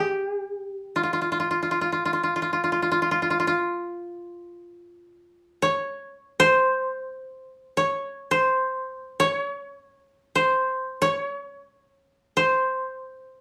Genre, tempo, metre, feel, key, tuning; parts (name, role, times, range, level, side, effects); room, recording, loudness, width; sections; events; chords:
japanese traditional, Japanese chamber music; free time; A4 = 440 Hz
koto; solo; 0.0-13.4 s; F4 to Db5; -24 LUFS; equal
light reverb; studio reverb; -25 LUFS; mono
0.0-13.4 A section